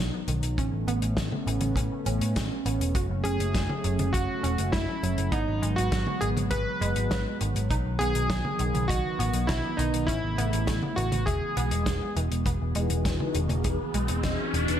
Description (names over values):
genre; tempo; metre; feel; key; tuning
synthwave; 101 BPM; 4/4; straight; unclear; A4 = 435 Hz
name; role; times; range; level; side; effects
chorused pulse-width pad; sustained chords; 0.0-14.8 s; C#3 to D#5; -33 LUFS; right 1 dB; sidechain pumping
analog pluck; arpeggios; 0.0-14.7 s; D#3 to F#5; -36 LUFS; right 3 dB; chorus, ping-pong delay
vintage muted picked electric bass; bass; 0.0-14.8 s; E1 to A2; -28 LUFS; equal; none
warm soul drum kit; drums; 0.3-14.8 s; hi-hat, snare drum, toms; -34 LUFS; left 1 dB; gated reverb
kick drum; drums; 0.6-14.4 s; none; -31 LUFS; equal; none
clear electric grand piano; melody; 3.2-12.1 s; D#4 to B4; -31 LUFS; equal; tape echo
riser; sound effects; 13.2-14.8 s; none; -34 LUFS; left 1 dB; none
mellow synth brass; stabs; 12.8-14.8 s; B2 to D#5; -32 LUFS; left 3 dB; chorus, cassette tape, ping-pong delay
room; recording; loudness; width
light reverb, small room ambience; none; -25 LUFS; side -10 dB against mid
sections
0.0-12.5 A section; 12.5-14.8 B section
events
filter sweep on analog polysynth 12.5-14.8; riser 13.2-14.8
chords
0.0 B; 0.6 Aadd9; 3.0 F#m; 5.3 G#m7; 7.7 B; 10.1 Aadd9; 11.3 E; 12.5 Emaj7